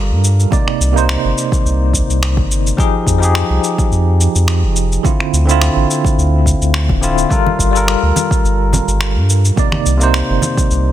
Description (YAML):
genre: sunset chillout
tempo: 106 BPM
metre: 4/4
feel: swing 54% on 16ths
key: G minor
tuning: A4 = 440 Hz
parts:
  - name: bell-like tine electric piano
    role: accompaniment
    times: 0.0-10.9 s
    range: C3 to D5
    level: -17 LUFS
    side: moving between left 6 dB and right 8 dB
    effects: medium stereo tremolo, auto-pan, tape echo
  - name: warm sub bass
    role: bass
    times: 0.0-10.9 s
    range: D1 to G2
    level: -14 LUFS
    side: equal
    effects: none
  - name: electronic shaker and finger snaps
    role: drums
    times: 0.2-10.8 s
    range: none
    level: -21 LUFS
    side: left 1 dB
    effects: overdrive, soft clipping on snare
  - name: electronic kick drum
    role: drums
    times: 0.5-10.7 s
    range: none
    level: -16 LUFS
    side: equal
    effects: overdrive
  - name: congas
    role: percussion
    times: 7.5-10.5 s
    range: none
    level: -21 LUFS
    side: right 1 dB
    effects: none
room: little or no reverb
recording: dense, heavily limited modern master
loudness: -11 LUFS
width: side -12 dB against mid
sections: 0.0-10.9 A section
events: none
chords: 0.0 Gm9; 0.5 Cm9; 2.8 Fm9; 5.0 Dm9; 7.3 Gm9; 9.6 Cm9